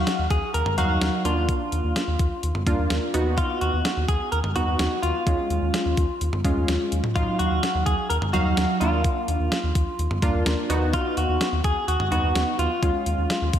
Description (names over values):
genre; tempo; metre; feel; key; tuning
synth-pop; 127 BPM; 4/4; straight; Eb minor; A4 = 440 Hz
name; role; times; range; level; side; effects
direct-recorded clean electric guitar; melody; 0.0-13.6 s; F4 to Bb4; -27 LUFS; equal; wide subtle chorus, analog delay
funky polysynth comp; accompaniment; 0.0-13.6 s; Gb3 to F5; -27 LUFS; right 1 dB; chorus
round analog bass; bass; 0.0-13.6 s; Eb2; -25 LUFS; equal; none
clean 12-bit digital drum machine; drums; 0.1-13.6 s; hi-hat, kick drum, snare drum, toms; -26 LUFS; equal; overdrive
room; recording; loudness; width
wet lush hall reverb, RT60 2.1 s; dreamy mix soaked in reverb; -21 LUFS; side -10 dB against mid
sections
0.0-13.6 A section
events
none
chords
0.0 Ebmadd9; 1.3 Bb/Eb; 3.1 B/D#; 5.3 Db/Eb; 7.2 Ebmadd9; 8.8 Bb/Eb; 10.7 B/D#; 12.8 Db/Eb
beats
0.07 0.54 1.01 | 1.49 1.96 2.43 2.90 | 3.38 3.85 4.32 4.79 | 5.27 5.74 6.21 6.68 | 7.16 7.63 8.10 8.57 | 9.05 9.52 9.99 10.46 | 10.94 11.41 11.88 12.35 | 12.83 13.30